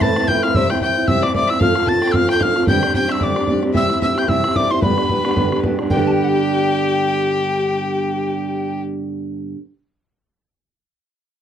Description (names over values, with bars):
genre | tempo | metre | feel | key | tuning
celtic folk, Celtic reel | 224 BPM | 4/4 | swing 57% on 8ths | G mixolydian | A4 = 440 Hz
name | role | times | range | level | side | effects
breathy bright tin whistle | melody | 0.0-8.8 s | F#5 to A6 | -21 LUFS | left 1 dB | none
bright fiddle | second line | 0.0-8.8 s | G4 to A5 | -24 LUFS | left 5 dB | none
fingerpicked old ladder-braced acoustic guitar | accompaniment | 0.0-9.6 s | G2 to C5 | -19 LUFS | right 1 dB | none
bodhran | percussion | 0.0-6.0 s | none | -22 LUFS | right 1 dB | none
room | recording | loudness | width
moderate studio ambience, RT60 0.5 s | dark, warm production | -15 LUFS | side -9 dB against mid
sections
0.0-5.9 A section; 5.9-8.1 B section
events
none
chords
0.0 Amadd9; 0.5 C; 1.6 F; 2.7 Gsus4; 3.7 C; 4.8 G